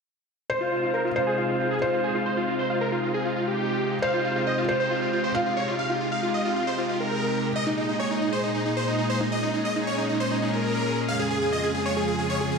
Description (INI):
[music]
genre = trance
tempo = 136 BPM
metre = 4/4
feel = straight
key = F minor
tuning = A4 = 440 Hz
[part]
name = supersaw chords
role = melody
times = 0.5-12.6 s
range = Eb4 to F5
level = -26 LUFS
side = equal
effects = low-pass filter, dub echo
[part]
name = felt-muted upright piano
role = second line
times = 0.5-7.5 s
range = C5 to F5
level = -28 LUFS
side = equal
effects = digital delay
[part]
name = lush unison pad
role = sustained chords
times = 0.5-12.6 s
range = F2 to Ab4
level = -27 LUFS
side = equal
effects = chorus
[sound]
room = wet lush hall reverb, RT60 2.5 s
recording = none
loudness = -23 LUFS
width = side -5 dB against mid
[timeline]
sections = 0.5-12.6 A section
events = filter sweep on supersaw synth 0.5-12.6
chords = 0.5 Fm7; 7.6 Ebsus4; 11.1 Db/F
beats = | 0.50 0.94 1.38 1.82 | 2.26 2.70 3.14 3.58 | 4.03 4.47 4.91 5.35 | 5.79 6.23 6.67 7.11 | 7.55 8.00 8.44 8.88 | 9.32 9.76 10.20 10.64 | 11.09 11.53 11.97 12.41